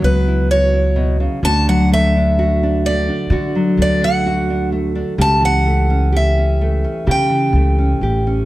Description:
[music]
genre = folk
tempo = 64 BPM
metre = 4/4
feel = straight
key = unclear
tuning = A4 = 440 Hz
[part]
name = picked steel-string acoustic guitar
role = melody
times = 0.0-8.5 s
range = B4 to A5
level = -19 LUFS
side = right 1 dB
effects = none
[part]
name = nylon-string guitar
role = accompaniment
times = 0.0-8.5 s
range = B2 to G4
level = -18 LUFS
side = equal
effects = none
[part]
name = upright bass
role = bass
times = 0.0-8.4 s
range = A1 to D3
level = -17 LUFS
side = equal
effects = none
[sound]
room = light reverb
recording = dark, warm production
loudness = -13 LUFS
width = side -16 dB against mid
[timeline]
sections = 0.0-8.5 A section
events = none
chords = 0.0 F#7sus4/C#; 1.4 D; 5.2 A7/C#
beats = 0.49 | 1.43 2.37 3.30 4.24 | 5.18 6.12 7.07 8.01

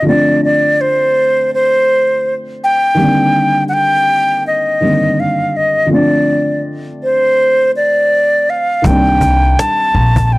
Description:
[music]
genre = lo-fi hip hop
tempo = 82 BPM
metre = 4/4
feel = swing 66% on 16ths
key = unclear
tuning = A4 = 440 Hz
[part]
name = breathy concert flute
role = melody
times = 0.0-10.4 s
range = C5 to A5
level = -12 LUFS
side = equal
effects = none
[part]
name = felt-muted upright piano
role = accompaniment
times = 0.0-10.4 s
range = D3 to D4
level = -17 LUFS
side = equal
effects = none
[part]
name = upright bass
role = bass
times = 8.8-10.4 s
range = Bb1 to C2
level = -12 LUFS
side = equal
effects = transformer saturation
[part]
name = cajon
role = drums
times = 8.8-10.4 s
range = none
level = -16 LUFS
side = equal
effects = none
[sound]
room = light reverb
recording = dry, gritty hardware recording, transformer saturation, cassette tape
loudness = -10 LUFS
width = side -21 dB against mid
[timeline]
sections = 0.0-10.4 A section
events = none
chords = 0.1 Dm7; 3.0 Cm9; 5.9 Dm7; 8.8 Cm9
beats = | 0.06 0.79 1.52 2.25 | 2.99 3.72 4.45 5.18 | 5.91 6.64 7.38 8.11 | 8.84 9.57 10.30

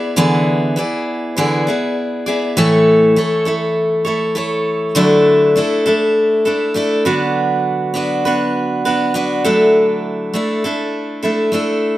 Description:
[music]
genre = pop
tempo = 100 BPM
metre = 4/4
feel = straight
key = A major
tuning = A4 = 440 Hz
[part]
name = picked steel-string acoustic guitar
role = solo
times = 0.0-12.0 s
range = A2 to D5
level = -13 LUFS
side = equal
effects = slapback echo
[sound]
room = little or no reverb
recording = recorded outdoors, with no room sound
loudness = -13 LUFS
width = side -15 dB against mid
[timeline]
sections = 0.0-2.6 A section; 2.6-12.0 B section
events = none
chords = 0.0 E7; 2.6 A; 5.0 Dadd9; 7.1 Bm/D; 9.4 Dadd9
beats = | 0.18 0.78 1.38 1.98 | 2.58 3.17 3.77 4.37 | 4.96 5.56 6.16 6.76 | 7.35 7.95 8.55 9.14 | 9.74 10.34 10.94 11.53

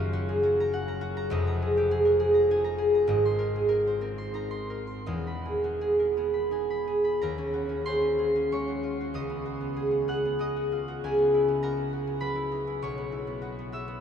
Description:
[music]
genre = classical, solo harp piece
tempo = 77-103 BPM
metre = 3/4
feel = rubato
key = unclear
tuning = A4 = 440 Hz
[part]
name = concert harp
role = solo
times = 0.0-14.0 s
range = E1 to Gb6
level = -25 LUFS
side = equal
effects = none
[sound]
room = wet huge ambient reverb, RT60 7.8 s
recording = in a vast, echoing space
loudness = -25 LUFS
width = side -8 dB against mid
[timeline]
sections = 0.0-7.2 A section; 7.2-14.0 B section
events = none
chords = 0.0 Gbmaj7; 1.3 Fm11; 3.1 Abadd9; 5.1 Emaj7; 7.2 Ebm11; 9.1 Db9sus4; 11.0 Dbm11; 12.8 Bsus24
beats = 0.12 0.71 | 1.31 1.91 2.50 | 3.09 3.69 4.33 | 5.07 5.81 6.51 | 7.22 7.86 8.51 | 9.15 9.76 10.39 | 11.03 11.64 12.23 | 12.83 13.44

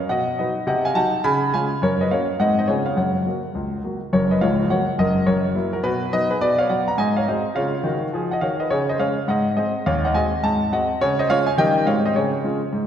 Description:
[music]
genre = jazz, stride piano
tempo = 209 BPM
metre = 4/4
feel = swing 62% on 8ths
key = F# major, Db major from 8.7 s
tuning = A4 = 442 Hz
[part]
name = clear concert grand piano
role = solo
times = 0.0-12.9 s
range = C#1 to B5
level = -18 LUFS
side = equal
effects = none
[sound]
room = wet concert hall reverb, RT60 2.1 s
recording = recorded in a church or concert hall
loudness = -18 LUFS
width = side -9 dB against mid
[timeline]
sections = 0.0-4.1 A section; 4.1-12.9 A section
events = none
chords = 0.1 B; 0.7 Cdim7; 1.2 C#7; 1.8 F#; 2.4 G#7; 2.7 C#7; 3.0 F#; 5.3 F#7; 5.8 B; 6.4 Bm; 7.0 G#7; 7.6 C#; 8.7 Db; 9.3 Ab7; 9.9 Ab7/Eb; 10.4 Ab7b9; 11.0 Db; 11.6 Eb7; 11.9 Ab7; 12.2 Db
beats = 0.09 0.38 | 0.67 0.95 1.24 1.53 | 1.82 2.10 2.39 2.68 | 2.97 3.25 3.54 3.83 | 4.11 4.40 4.69 4.97 | 5.26 5.55 5.83 6.12 | 6.41 6.70 6.98 7.27 | 7.56 7.84 8.13 8.42 | 8.71 8.99 9.28 9.57 | 9.86 10.14 10.43 10.72 | 11.01 11.29 11.58 11.87 | 12.15 12.44 12.73

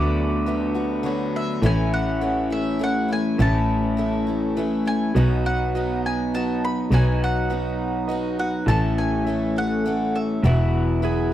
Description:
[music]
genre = rock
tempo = 102 BPM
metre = 3/4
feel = straight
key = unclear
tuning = A4 = 440 Hz
[part]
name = mandolin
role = melody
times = 0.0-11.3 s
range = D5 to B5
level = -29 LUFS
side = equal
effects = none
[part]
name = picked steel-string acoustic guitar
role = accompaniment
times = 0.0-11.3 s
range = E2 to A4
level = -30 LUFS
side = left 6 dB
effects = none
[part]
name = warm baby grand piano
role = accompaniment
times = 0.0-11.3 s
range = E4 to F#5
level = -35 LUFS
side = right 5 dB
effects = none
[part]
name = hand-pumped harmonium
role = sustained chords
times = 0.0-11.3 s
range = E3 to B4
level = -36 LUFS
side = right 2 dB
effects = none
[part]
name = electric guitar through a small old amp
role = riff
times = 0.0-11.3 s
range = E2 to A4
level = -24 LUFS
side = equal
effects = spring reverb
[part]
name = rich double bass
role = bass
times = 0.0-11.3 s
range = E1 to D2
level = -23 LUFS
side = equal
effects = none
[part]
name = pedal steel guitar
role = second line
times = 11.0-11.3 s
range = G#4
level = -27 LUFS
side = right 7 dB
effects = none
[sound]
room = studio ambience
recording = dry, close 1970s-style studio recording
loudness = -20 LUFS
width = side -12 dB against mid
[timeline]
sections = 0.0-11.3 A section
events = none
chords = 0.0 D6; 1.6 A; 5.2 B; 8.7 A; 10.4 Esus2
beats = 0.46 1.05 | 1.63 2.22 2.81 | 3.40 3.98 4.57 | 5.16 5.74 6.33 | 6.92 7.50 8.09 | 8.68 9.27 9.85 | 10.44 11.03

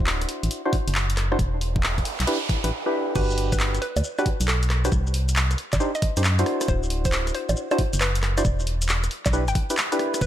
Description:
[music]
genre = UK garage, two-step garage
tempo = 136 BPM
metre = 4/4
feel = swing 67% on 16ths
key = G major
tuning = A4 = 440 Hz
[part]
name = percussive organ stab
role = stabs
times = 0.0-10.2 s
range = D4 to C5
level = -28 LUFS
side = equal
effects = chorus, digital delay
[part]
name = organ-like FM bass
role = bass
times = 0.0-10.3 s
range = D1 to F#2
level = -24 LUFS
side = equal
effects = none
[part]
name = punchy analog drum machine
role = drums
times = 0.1-10.3 s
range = bongos, crash cymbal, handclaps, hi-hat, rim click, shaker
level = -27 LUFS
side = equal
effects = none
[part]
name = electronic kick drum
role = drums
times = 0.7-10.3 s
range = none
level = -24 LUFS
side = equal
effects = overdrive
[part]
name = noise sweep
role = sound effects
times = 1.6-3.2 s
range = none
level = -32 LUFS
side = right 5 dB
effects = none
[part]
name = hollow square pluck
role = melody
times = 3.2-10.3 s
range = A4 to G5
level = -32 LUFS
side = equal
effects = chorus, tape echo
[sound]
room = digital ambience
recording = none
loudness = -21 LUFS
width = side -12 dB against mid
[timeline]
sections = 0.0-3.2 A section; 3.2-10.3 B section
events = noise sweep 1.6-3.2; break 2.7-3.2; drop 3.2-10.3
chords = 0.0 D9; 1.4 Em7; 3.2 Gmaj7; 4.9 Cmadd9; 6.5 D9; 8.4 Em7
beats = 0.07 0.51 0.95 | 1.39 1.83 2.27 2.71 | 3.15 3.60 4.04 4.48 | 4.92 5.36 5.80 6.24 | 6.68 7.12 7.57 8.01 | 8.45 8.89 9.33 9.77 | 10.21

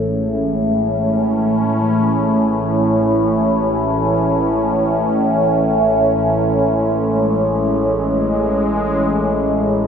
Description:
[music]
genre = dark ambient drone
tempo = free time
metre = none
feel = none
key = A major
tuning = A4 = 440 Hz
[part]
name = sweeping resonant pad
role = sustained chords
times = 0.0-9.9 s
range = A2 to C#4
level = -18 LUFS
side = equal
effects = chorus
[part]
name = overtone-sweeping drone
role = drone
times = 0.0-9.9 s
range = A1 to A2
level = -17 LUFS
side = equal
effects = chorus, built-in reverb
[part]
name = bronze singing bowl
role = texture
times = 0.0-9.9 s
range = G#3 to G#4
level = -35 LUFS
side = equal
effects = none
[sound]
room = wet spring reverb, RT60 2.3 s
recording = none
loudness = -14 LUFS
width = side -7 dB against mid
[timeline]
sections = 0.0-9.9 A section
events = none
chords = 0.0 A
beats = free time

